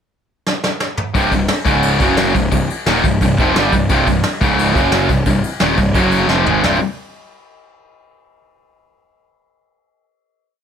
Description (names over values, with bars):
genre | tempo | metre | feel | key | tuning
heavy metal | 175 BPM | 4/4 | straight | unclear | A4 = 440 Hz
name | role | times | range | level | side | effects
soft brush drum kit | drums | 0.5-6.7 s | crash cymbal, hi-hat, kick drum, snare drum, toms | -18 LUFS | equal | none
high-gain distorted guitar | riff | 1.1-6.8 s | C2 to Ab3 | -17 LUFS | left 8 dB | distortion
fuzz picked electric bass | bass | 1.1-6.8 s | C1 to Ab1 | -21 LUFS | equal | overdrive
distorted electric guitar | riff | 1.2-6.8 s | C2 to Ab3 | -18 LUFS | right 10 dB | distortion
room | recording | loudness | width
light reverb | none | -13 LUFS | side -8 dB against mid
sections
0.0-1.1 pickup bar; 1.1-6.6 riff; 6.6-8.0 final chord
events
drum fill 0.5-1.1, 6.3-6.6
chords
0.0 N.C.; 1.1 C5; 1.7 Db5; 2.0 F#5; 2.4 Cm; 4.4 Db5; 4.8 F#5; 5.1 Cm; 6.0 F#5; 6.3 Cm; 6.6 C5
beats
0.10 0.45 0.80 | 1.14 1.49 1.83 2.18 | 2.52 2.87 3.21 3.55 | 3.90 4.24 4.58 4.92 | 5.26 5.61 5.95 6.29 | 6.64